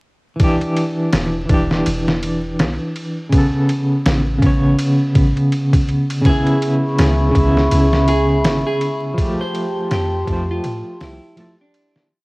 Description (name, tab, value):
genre	trip hop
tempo	82 BPM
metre	4/4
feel	swing 58% on 16ths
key	unclear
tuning	A4 = 439 Hz
part	clean electric guitar	accompaniment	0.4-11.6 s	C#3 to C#5	-17 LUFS	equal	tremolo
part	trip hop sampler-style drum kit	drums	0.4-12.1 s	hi-hat, kick drum, ride cymbal, snare drum	-19 LUFS	equal	studio ambience, cassette tape
part	soft 808-style bass	bass	1.1-11.2 s	E1 to A2	-20 LUFS	equal	none
part	clean electric guitar	melody	6.3-12.1 s	D4 to C5	-26 LUFS	equal	vintage 12-bit sampler grit, cassette tape, tape echo, plate reverb
part	dark analog pad	sustained chords	6.6-12.1 s	G4 to C#6	-22 LUFS	equal	chorus, vintage 12-bit sampler grit, plate reverb
room	moderate studio reverb, RT60 0.7 s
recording	home recording on cassette, vinyl crackle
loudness	-14 LUFS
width	side -25 dB against mid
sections	0.4-12.1 groove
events	fade-out 8.2-12.1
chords	0.4 Em7; 3.3 Aadd9; 6.2 C#m7; 9.2 Fadd9